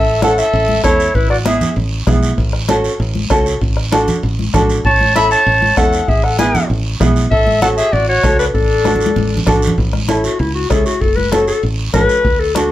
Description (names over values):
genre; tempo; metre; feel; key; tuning
latin, cumbia; 195 BPM; 4/4; straight; A major; A4 = 436 Hz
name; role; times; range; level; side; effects
warm clarinet; melody; 0.0-1.7, 4.9-12.7 s; E4 to B5; -15 LUFS; left 2 dB; none
warm trumpet; second line; 0.0-1.7, 4.9-9.4 s; D4 to E5; -21 LUFS; right 2 dB; none
fingered electric bass; bass; 0.0-12.7 s; F#1 to E2; -18 LUFS; equal; none
clear upright piano; accompaniment; 0.2-12.7 s; B3 to A4; -17 LUFS; right 2 dB; none
bombo; percussion; 0.2-12.7 s; none; -19 LUFS; equal; none
congas; percussion; 0.2-12.7 s; none; -21 LUFS; left 2 dB; none
guiro; percussion; 0.2-12.7 s; none; -27 LUFS; right 5 dB; none
room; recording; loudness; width
wet studio ambience, RT60 0.5 s; heard from further back in the room; -12 LUFS; side -14 dB against mid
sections
0.0-9.8 A section; 9.8-12.7 B section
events
drum fill 8.9-9.8; clarinet solo 9.8-12.7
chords
0.0 A; 1.1 E/A; 2.4 F#m/A; 3.6 D/A; 4.8 A; 6.1 E/A; 7.3 F#m/A; 8.5 D/A; 9.8 A; 11.0 F#m